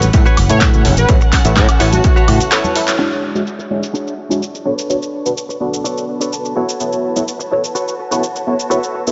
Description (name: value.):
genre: filtered disco house.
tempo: 126 BPM.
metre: 4/4.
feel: straight.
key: A major.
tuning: A4 = 439 Hz.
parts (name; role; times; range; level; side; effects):
muted studio violin section; sustained chords; 0.0-9.1 s; C#4 to C#6; -28 LUFS; equal; sidechain pumping, low-pass filter.
direct-recorded clean electric guitar; riff; 0.0-9.0 s; D4 to A5; -26 LUFS; equal; sidechain pumping, low-pass filter, dub echo.
fingered electric bass; bass; 0.0-2.4 s; F#1 to A2; -16 LUFS; equal; tube saturation, sidechain pumping, low-pass filter.
punchy analog drum machine; drums; 0.0-9.1 s; handclaps, hi-hat, shaker, woodblock; -23 LUFS; equal; sidechain pumping on hats, low-pass filter on hats, studio reverb, sidechain pumping on perc, low-pass filter on perc, low-pass filter on snare, dub echo.
congas and tambourine; percussion; 0.0-3.0 s; none; -27 LUFS; equal; none.
electronic kick drum; drums; 0.1-2.1 s; none; -15 LUFS; equal; studio reverb.
analog synth brass; melody; 0.5-2.6 s; F#4 to C#5; -24 LUFS; equal; chorus, sidechain pumping, low-pass filter, dub echo.
funky polysynth comp; accompaniment; 0.5-9.1 s; G#3 to A5; -22 LUFS; equal; chorus, phaser, vintage 12-bit sampler grit, sidechain pumping, low-pass filter.
room: light reverb.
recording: echo-heavy mix, nothing above 7.7 kHz.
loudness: -15 LUFS.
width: mono.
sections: 0.0-3.0 A section; 3.0-9.1 B section.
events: drum fill 2.5-3.0; band accent 2.9; filter sweep on drum 3.0-9.1; clean electric guitar fill 6.1-6.8.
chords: 0.0 A69; 3.0 E13; 4.7 Bm9; 6.6 A69.